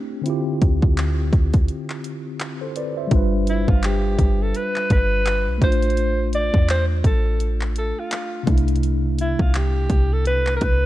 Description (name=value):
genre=contemporary R&B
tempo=84 BPM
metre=4/4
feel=swing 58% on 16ths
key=unclear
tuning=A4 = 442 Hz
part: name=mellow tine electric piano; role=accompaniment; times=0.0-10.9 s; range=C3 to E5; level=-25 LUFS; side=equal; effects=medium stereo tremolo
part: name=trap drum kit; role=drums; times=0.3-10.8 s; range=handclaps, hi-hat, kick drum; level=-21 LUFS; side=equal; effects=none
part: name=clean 808-style bass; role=bass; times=0.6-10.9 s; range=G1 to E2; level=-20 LUFS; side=equal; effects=none
part: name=breathy alto saxophone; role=melody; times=3.5-10.9 s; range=E4 to D5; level=-24 LUFS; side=equal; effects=tape echo
room=digital ambience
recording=dark, warm production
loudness=-18 LUFS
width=side -15 dB against mid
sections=0.0-3.1 A section; 3.1-10.9 B section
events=break 1.7-3.1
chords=0.3 Dm11; 3.1 G7; 5.6 F6/A; 8.5 C69